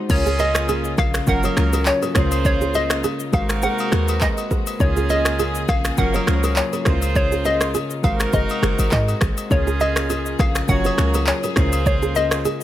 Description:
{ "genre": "afrobeats", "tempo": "102 BPM", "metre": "4/4", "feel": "swing 55% on 16ths", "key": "Db major", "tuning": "A4 = 440 Hz", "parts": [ { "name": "soft electric-piano-like synth keys", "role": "accompaniment", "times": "0.0-12.6 s", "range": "Db3 to Db5", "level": "-26 LUFS", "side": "left 2 dB", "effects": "chorus" }, { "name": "clear studio string section", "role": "sustained chords", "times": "0.0-12.6 s", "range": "C3 to Ab4", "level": "-32 LUFS", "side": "equal", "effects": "none" }, { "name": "hollow square pluck", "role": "melody", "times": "0.1-12.6 s", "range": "Db5 to Gb5", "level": "-25 LUFS", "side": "left 1 dB", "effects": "chorus, digital delay" }, { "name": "clear horn section", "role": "second line", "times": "0.1-12.4 s", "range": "Bb3 to Db5", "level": "-27 LUFS", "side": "right 4 dB", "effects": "none" }, { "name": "short 808-style bass", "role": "bass", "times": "0.1-12.5 s", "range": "Gb1 to Ab2", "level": "-22 LUFS", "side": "equal", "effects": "none" }, { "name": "afro-pop drum kit", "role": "drums", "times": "0.1-12.6 s", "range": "crash cymbal, finger snaps, handclaps, kick drum, rim click, shaker", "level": "-23 LUFS", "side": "equal", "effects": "none" }, { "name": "nylon-string guitar", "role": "riff", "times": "0.3-12.5 s", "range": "F4 to Db5", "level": "-28 LUFS", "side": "right 5 dB", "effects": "digital delay" }, { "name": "agogo bells and woodblock", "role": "percussion", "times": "0.4-12.6 s", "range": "none", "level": "-32 LUFS", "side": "left 6 dB", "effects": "none" } ], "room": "little or no reverb", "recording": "none", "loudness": "-17 LUFS", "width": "side -13 dB against mid", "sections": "0.1-12.6 A section", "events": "none", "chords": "0.1 Db6; 1.3 Gbmaj7; 2.2 Db6; 3.3 Ab9; 4.8 Db6; 6.0 Gbmaj7; 6.9 Db6; 8.0 Ab9; 9.5 Db6; 10.7 Gbmaj7; 11.6 Db6" }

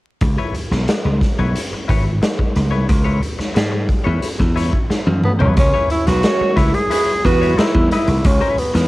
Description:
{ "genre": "funk", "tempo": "90 BPM", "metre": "4/4", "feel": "straight", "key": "C# minor", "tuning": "A4 = 440 Hz", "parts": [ { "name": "semi-hollow electric guitar", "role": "accompaniment", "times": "0.2-8.8 s", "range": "E4 to D#5", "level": "-27 LUFS", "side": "left 7 dB", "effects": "cassette tape" }, { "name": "slap bass", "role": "bass", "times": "0.2-8.9 s", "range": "G#1 to G#2", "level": "-17 LUFS", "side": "equal", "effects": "none" }, { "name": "raw garage drum kit", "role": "drums", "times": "0.2-8.9 s", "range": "hi-hat, kick drum, snare drum, toms", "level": "-18 LUFS", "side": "equal", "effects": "cassette tape" }, { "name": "warm tenor saxophone", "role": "melody", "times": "5.2-8.9 s", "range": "B3 to G#4", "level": "-18 LUFS", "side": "equal", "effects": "cassette tape" }, { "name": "mellow horn section", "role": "second line", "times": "5.9-7.5 s", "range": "G#3 to C#5", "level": "-23 LUFS", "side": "right 7 dB", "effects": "cassette tape" } ], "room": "light reverb, studio reverb", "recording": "home recording on cassette, vinyl crackle", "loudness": "-14 LUFS", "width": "side -18 dB against mid", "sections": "0.2-5.6 A section; 5.6-8.9 B section", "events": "drum fill 4.9-5.6", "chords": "0.2 C#m7" }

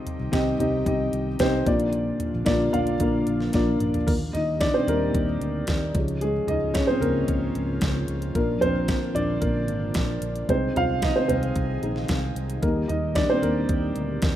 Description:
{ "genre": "piano-driven pop", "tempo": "112 BPM", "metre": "4/4", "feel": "straight", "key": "Eb major", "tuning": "A4 = 440 Hz", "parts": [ { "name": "dark upright piano", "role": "accompaniment", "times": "0.0-14.4 s", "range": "Bb2 to C6", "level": "-24 LUFS", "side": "equal", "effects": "none" }, { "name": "airy breathy pad", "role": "sustained chords", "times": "0.0-14.4 s", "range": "Ab2 to Ab4", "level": "-34 LUFS", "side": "equal", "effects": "chorus" }, { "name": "pop drum kit", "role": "drums", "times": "0.1-14.4 s", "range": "crash cymbal, hi-hat, kick drum, snare drum, toms", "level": "-28 LUFS", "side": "equal", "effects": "overdrive" }, { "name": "fingered electric bass", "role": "bass", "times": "0.2-14.4 s", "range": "Ab1 to Eb2", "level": "-29 LUFS", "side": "equal", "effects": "none" } ], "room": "light reverb", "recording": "rough home demo mix", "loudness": "-22 LUFS", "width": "side -12 dB against mid", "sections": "0.0-4.1 A section; 4.1-14.4 B section", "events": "drum fill 3.5-4.1; upright piano solo 4.1-14.4", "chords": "0.0 Cm; 1.7 Bb; 4.1 Eb; 5.9 Db; 8.4 Bb; 10.5 Ab/C; 12.6 Eb" }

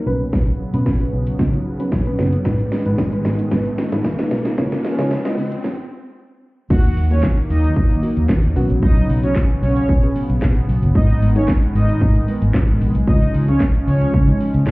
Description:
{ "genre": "dance-pop", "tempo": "113 BPM", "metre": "4/4", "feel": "straight", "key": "unclear", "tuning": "A4 = 440 Hz", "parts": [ { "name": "soft round pluck", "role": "accompaniment", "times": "0.0-14.7 s", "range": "F#3 to Eb5", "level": "-25 LUFS", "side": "equal", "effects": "chorus, sidechain pumping" }, { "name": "chorused pulse-width pad", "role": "sustained chords", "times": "0.0-14.7 s", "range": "C#3 to Db4", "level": "-25 LUFS", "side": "equal", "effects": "sidechain pumping" }, { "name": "riser", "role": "sound effects", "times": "0.6-5.6 s", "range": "none", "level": "-30 LUFS", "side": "right 1 dB", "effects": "none" }, { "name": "vintage muted fingered electric bass", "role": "bass", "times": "0.1-14.7 s", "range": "F#1 to Eb3", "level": "-18 LUFS", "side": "equal", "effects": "sidechain pumping" }, { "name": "house drum kit", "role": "drums", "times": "0.3-14.7 s", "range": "crash cymbal, handclaps, hi-hat, kick drum, shaker, snare drum", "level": "-18 LUFS", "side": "equal", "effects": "none" }, { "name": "tambourine", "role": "percussion", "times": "2.5-14.7 s", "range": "none", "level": "-65 LUFS", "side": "right 6 dB", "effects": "none" }, { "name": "soft supersaw", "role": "melody", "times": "6.7-14.7 s", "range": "Bb3 to Gb5", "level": "-25 LUFS", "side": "right 1 dB", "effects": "sidechain pumping, digital delay" } ], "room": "light reverb", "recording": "heard muffled through a wall, club reverb, EQ, high-pass filter", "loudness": "-15 LUFS", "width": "side -21 dB against mid", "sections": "0.0-6.7 A section; 6.7-14.7 B section", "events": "build-up 0.0-6.7; drum fill 0.0-5.6; filter sweep 0.0-6.7; riser 0.6-6.7; stop 5.6-6.7; drop 6.7-14.7", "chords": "0.1 Bsus2; 2.5 Abm; 4.6 Db; 6.7 Ebm; 8.6 Bsus2; 11.0 Abm; 13.1 Db" }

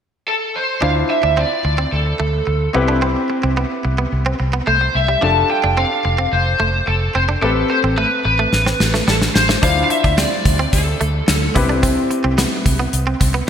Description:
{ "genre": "1980s-style pop", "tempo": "109 BPM", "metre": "4/4", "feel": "straight", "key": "D dorian", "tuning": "A4 = 441 Hz", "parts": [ { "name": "lead guitar through a small cranked amp", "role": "melody", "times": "0.3-11.5 s", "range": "A4 to A5", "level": "-18 LUFS", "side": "equal", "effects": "overdrive, wide subtle chorus" }, { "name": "clear concert grand piano", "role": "accompaniment", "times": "0.8-13.5 s", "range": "C4 to C5", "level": "-22 LUFS", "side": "left 3 dB", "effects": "none" }, { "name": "direct-recorded clean electric guitar", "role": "riff", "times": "0.8-13.5 s", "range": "E3 to D4", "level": "-24 LUFS", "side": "right 4 dB", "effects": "analog chorus" }, { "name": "vintage muted fingered electric bass", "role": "bass", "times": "0.8-13.4 s", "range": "F1 to D2", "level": "-19 LUFS", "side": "equal", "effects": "none" }, { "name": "gated 80s drum kit", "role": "drums", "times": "8.5-13.3 s", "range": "hi-hat, kick drum, snare drum", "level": "-17 LUFS", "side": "equal", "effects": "gated reverb" } ], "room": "wet lush hall reverb, RT60 1.8 s, small room ambience", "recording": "bright 1980s-style digital production", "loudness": "-14 LUFS", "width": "side -8 dB against mid", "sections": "0.8-13.5 A section", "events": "drum fill 8.5-9.6", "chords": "0.0 N.C.; 0.8 Dm9; 2.7 Cmaj7; 5.2 F69; 7.4 Am9; 9.6 Dm9; 11.6 Cmaj7" }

